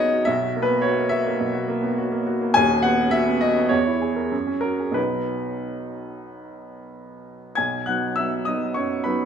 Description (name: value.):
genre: classical, romantic character piece for solo piano.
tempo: 89-106 BPM.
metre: 4/4.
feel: rubato.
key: B major.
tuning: A4 = 440 Hz.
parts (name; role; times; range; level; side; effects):
warm baby grand piano; solo; 0.0-9.3 s; D#1 to G#6; -20 LUFS; equal; none.
room: moderate recital hall reverb, RT60 1.4 s.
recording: none.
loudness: -20 LUFS.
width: side -7 dB against mid.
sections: 0.0-7.6 A section; 7.6-9.3 B section.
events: none.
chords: 0.3 F#7/B; 2.6 B/D#; 3.7 E6; 4.3 F#; 5.0 B.